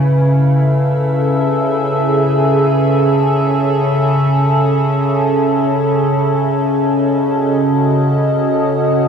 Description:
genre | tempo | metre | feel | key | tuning
ambient | free time | none | none | unclear | A4 = 440 Hz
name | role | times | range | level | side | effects
evolving wavetable pad | solo | 0.0-9.1 s | C#3 to E5 | -12 LUFS | equal | chorus, built-in reverb, ping-pong delay
room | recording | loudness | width
wet cathedral reverb, RT60 5.1 s | in a vast, echoing space | -12 LUFS | side -6 dB against mid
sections
0.0-9.1 A section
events
none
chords
0.0 F#m7/C#

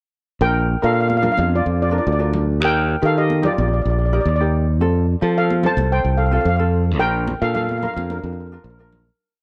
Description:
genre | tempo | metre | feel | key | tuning
calypso | 109 BPM | 4/4 | straight | Bb major | A4 = 440 Hz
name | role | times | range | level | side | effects
steel pan | melody | 0.4-8.8 s | D4 to A5 | -24 LUFS | equal | none
ukulele | accompaniment | 0.4-9.0 s | C4 to Bb4 | -28 LUFS | equal | none
modern bright fingered electric bass | bass | 0.4-9.1 s | Bb1 to F3 | -21 LUFS | equal | none
congas | percussion | 1.1-9.1 s | none | -31 LUFS | equal | none
room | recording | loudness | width
light reverb, studio ambience | dark, warm production | -19 LUFS | mono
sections
0.4-9.2 chorus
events
fade-out 7.0-9.2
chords
0.4 Bb; 2.6 Eb; 4.8 F; 7.0 Bb

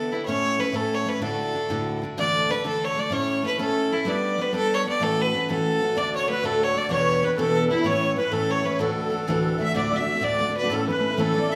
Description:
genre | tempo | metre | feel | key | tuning
celtic folk, Celtic jig | 127 BPM (dotted quarters) | 6/8 | straight | D major | A4 = 440 Hz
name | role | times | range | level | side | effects
clear fiddle | melody | 0.0-11.6 s | E4 to E5 | -27 LUFS | equal | none
picked steel-string acoustic guitar | accompaniment | 0.0-11.6 s | D2 to A4 | -28 LUFS | equal | none
musette accordion | second line | 6.0-11.6 s | E4 to E5 | -29 LUFS | equal | none
room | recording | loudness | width
wet recital hall reverb, RT60 1.2 s | none | -24 LUFS | mono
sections
0.0-2.2 A section; 2.2-9.7 A section; 9.7-11.6 B section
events
none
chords
0.3 A; 1.2 Dadd9; 2.2 Dsus2; 3.1 A; 4.1 G; 5.0 A6; 6.0 D; 6.9 Em7; 7.8 A; 8.8 Dadd9; 9.7 D; 10.7 A

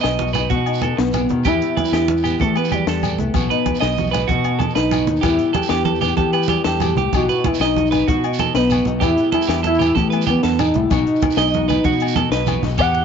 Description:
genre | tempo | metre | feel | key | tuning
highlife guitar band | 127 BPM (dotted quarters) | 12/8 | straight | E harmonic minor | A4 = 440 Hz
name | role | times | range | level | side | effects
warm velvety synth lead | melody | 0.0-13.0 s | G3 to F#5 | -19 LUFS | left 1 dB | chorus
nylon-string guitar | accompaniment | 0.0-13.0 s | E2 to G4 | -26 LUFS | left 12 dB | none
electric guitar at the edge of break-up | arpeggios | 0.0-13.0 s | F#4 to D#5 | -22 LUFS | right 12 dB | tape echo
fingered electric bass | bass | 0.0-13.0 s | B1 to E3 | -23 LUFS | left 1 dB | none
compact cocktail drum kit | drums | 0.0-13.0 s | hi-hat, kick drum, ride cymbal, snare drum | -25 LUFS | left 4 dB | none
agogo bells | percussion | 0.0-12.9 s | none | -29 LUFS | left 14 dB | none
shekere | percussion | 0.0-12.9 s | none | -30 LUFS | right 6 dB | none
congas | percussion | 0.1-12.8 s | none | -25 LUFS | right 7 dB | none
room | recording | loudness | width
light reverb, small room ambience | 1960s-style stereo with parts hard left and right, nothing above 7.7 kHz | -15 LUFS | side -7 dB against mid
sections
0.0-12.8 A section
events
drum fill 12.6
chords
0.0 B; 1.5 Em; 3.4 B; 5.2 Em; 7.1 B; 9.0 Em; 10.9 B

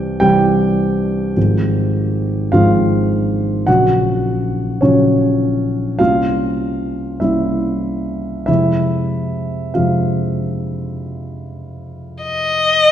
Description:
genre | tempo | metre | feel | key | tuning
classical, romantic duo for violin and grand piano | 47-52 BPM | 4/4 | rubato | F minor | A4 = 440 Hz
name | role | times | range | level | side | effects
dark grand piano | accompaniment | 0.0-12.9 s | Ab1 to G5 | -15 LUFS | equal | none
rich violin | melody | 12.2-12.9 s | Eb5 | -12 LUFS | left 2 dB | none
room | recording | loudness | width
wet scoring stage reverb, RT60 1.9 s | dark, warm production | -14 LUFS | side -10 dB against mid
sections
0.0-12.9 A section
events
none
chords
0.0 C; 1.4 Fm/Ab; 3.7 Gb/Bb; 6.0 C7b9; 8.5 Fm

